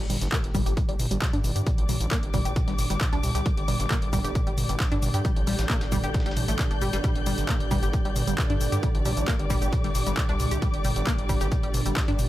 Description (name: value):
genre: driving peak-time techno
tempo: 134 BPM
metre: 4/4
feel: straight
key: unclear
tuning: A4 = 438 Hz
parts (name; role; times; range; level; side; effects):
- gritty driven synth bass; bass; 0.0-12.3 s; G1 to G2; -29 LUFS; equal; sidechain pumping
- deep dark ambient pad; drone; 1.6-12.3 s; G2 to D3; -36 LUFS; right 3 dB; chorus, built-in reverb, sidechain pumping
- dark studio string section; texture; 0.0-12.3 s; G3 to G6; -34 LUFS; left 3 dB; sidechain pumping
- tight sequenced synth; riff; 0.1-12.1 s; G3 to G4; -33 LUFS; equal; chorus, vintage 12-bit sampler grit, sidechain pumping, tape echo
- dusty soul sampler-style drum kit; drums; 0.1-12.3 s; hi-hat, snare drum; -43 LUFS; equal; none
- techno drum kit; drums; 0.1-12.3 s; handclaps, hi-hat, shaker, toms; -30 LUFS; equal; overdrive, sidechain pumping on hats, sidechain pumping on toms, sidechain pumping on cymbals, sidechain pumping on perc
- electronic kick drum; drums; 0.3-12.1 s; none; -26 LUFS; equal; overdrive
room: little or no reverb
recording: none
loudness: -23 LUFS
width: side -15 dB against mid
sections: 0.0-12.3 A section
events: none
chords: 0.0 G5